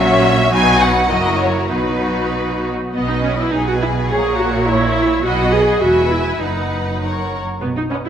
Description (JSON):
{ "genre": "quick classical-period movement for string orchestra", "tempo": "96-106 BPM", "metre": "2/4", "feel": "rubato", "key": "B major", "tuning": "A4 = 440 Hz", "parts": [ { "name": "rich studio violin section", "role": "melody", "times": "0.0-8.1 s", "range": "B4 to G#5", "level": "-21 LUFS", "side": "left 3 dB", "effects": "none" }, { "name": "rich studio violin section", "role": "second line", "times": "0.0-8.1 s", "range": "F#4 to E5", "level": "-21 LUFS", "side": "left 2 dB", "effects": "none" }, { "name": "rich studio viola section", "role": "accompaniment", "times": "0.0-8.1 s", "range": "F#3 to G#4", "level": "-18 LUFS", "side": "right 1 dB", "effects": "none" }, { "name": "clear studio cello section", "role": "bass", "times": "0.0-8.1 s", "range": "E2 to B2", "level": "-22 LUFS", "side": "right 3 dB", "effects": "none" }, { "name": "rich studio double bass section", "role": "bass", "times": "0.0-8.1 s", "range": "E1 to B1", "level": "-24 LUFS", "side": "right 2 dB", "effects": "none" } ], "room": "moderate concert hall reverb, RT60 1.9 s", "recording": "none", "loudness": "-14 LUFS", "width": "side -9 dB against mid", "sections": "0.0-2.9 A section; 2.9-8.1 A section", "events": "none", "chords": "0.0 F#7/A#; 0.5 B; 1.1 F#7; 1.7 B; 3.5 B6; 4.1 F#7/A#; 5.2 B; 5.8 E; 6.4 B/F#; 7.0 F#" }